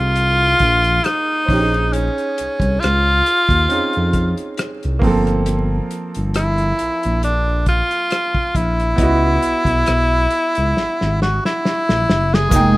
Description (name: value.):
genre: R&B, neo-soul.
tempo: 68 BPM.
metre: 4/4.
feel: swing 54% on 16ths.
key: unclear.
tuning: A4 = 440 Hz.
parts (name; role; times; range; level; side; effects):
clear tenor saxophone; melody; 0.0-12.8 s; Db4 to Ab4; -17 LUFS; equal; none.
clear baby grand piano; accompaniment; 0.0-12.8 s; F3 to G5; -24 LUFS; right 3 dB; none.
smooth gliding synth bass; bass; 0.0-12.8 s; F1 to F2; -19 LUFS; equal; none.
warm soul drum kit; drums; 0.2-12.7 s; hi-hat, kick drum, rim click, snare drum; -21 LUFS; equal; none.
hollow soft pad; sustained chords; 12.5-12.8 s; Ab3 to Eb6; -16 LUFS; right 1 dB; chorus.
egg shaker; percussion; 12.5-12.7 s; none; -30 LUFS; left 5 dB; none.
room: studio reverb.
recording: rough home demo mix, vinyl crackle.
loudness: -15 LUFS.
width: side -18 dB against mid.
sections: 0.0-12.5 A section.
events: drum fill 10.8-12.5.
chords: 0.0 Fm11; 1.5 Bbm11; 5.0 Gm11; 9.0 Dbm11.